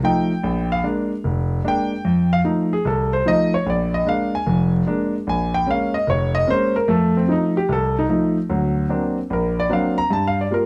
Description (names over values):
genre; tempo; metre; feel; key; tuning
solo jazz; 149 BPM; 4/4; swing 66% on 8ths; unclear; A4 = 441 Hz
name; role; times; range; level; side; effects
warm concert grand piano; solo; 0.0-10.7 s; F1 to A#5; -20 LUFS; equal; none
room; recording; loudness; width
light reverb; close, detailed microphones; -20 LUFS; mono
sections
0.0-10.7 A section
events
grand piano solo 0.0-10.7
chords
0.4 Bb7; 2.0 F7; 3.7 Bb7; 5.3 Bbm7; 6.9 F7; 8.5 Daug7; 10.1 Gm7